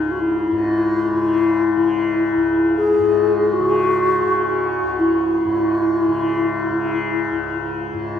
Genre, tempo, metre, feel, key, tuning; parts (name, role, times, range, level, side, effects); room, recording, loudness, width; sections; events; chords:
world meditative, free-time meditation music; free time; C# minor; A4 = 440 Hz
mellow bass flute; melody; 0.0-7.7 s; D#4 to G#4; -17 LUFS; left 2 dB; shimmer reverb, diffuse ambient delay
tanpura; drone; 0.0-8.2 s; C#2 to C#3; -25 LUFS; left 2 dB
wet cathedral reverb, RT60 7.2 s; in a vast, echoing space; -16 LUFS; side -8 dB against mid
0.0-8.2 A section